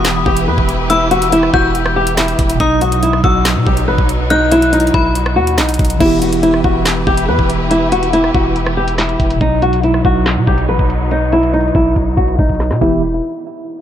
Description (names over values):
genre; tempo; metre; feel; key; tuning
hip hop, drill; 141 BPM; 4/4; half-time; E harmonic minor; A4 = 439 Hz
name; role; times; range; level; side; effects
flamenco guitar; melody; 0.0-13.0 s; D#4 to B4; -15 LUFS; left 1 dB; low-pass filter, ping-pong delay
metallic FM bell; second line; 0.0-5.1 s; B5 to G6; -20 LUFS; left 3 dB; chorus, ping-pong delay
mellow tine electric piano; accompaniment; 0.0-13.0 s; B2 to G4; -21 LUFS; right 1 dB; medium stereo tremolo, low-pass filter
warm studio string section; sustained chords; 0.0-13.0 s; E3 to B4; -23 LUFS; left 1 dB; none
long sustained 808-style bass; bass; 0.0-13.2 s; E1 to B2; -19 LUFS; equal; none
drill drum kit; drums; 0.0-12.9 s; crash cymbal, handclaps, hi-hat, kick drum, rim click, snare drum; -18 LUFS; equal; none
room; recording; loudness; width
little or no reverb; low-pass filter; -11 LUFS; side -10 dB against mid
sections
0.0-6.0 A section; 6.0-12.8 B section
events
filter sweep 6.0-12.8; drum fill 12.0-12.8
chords
0.0 Em; 2.6 B; 6.0 Em; 9.4 B; 12.8 Em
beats
0.05 0.47 | 0.90 1.32 1.75 2.17 | 2.60 3.03 3.45 3.88 | 4.30 4.73 5.15 5.58 | 6.00 6.43 6.86 7.28 | 7.71 8.13 8.56 8.98 | 9.41 9.84 10.26 10.69 | 11.11 11.54 11.96 12.39 | 12.81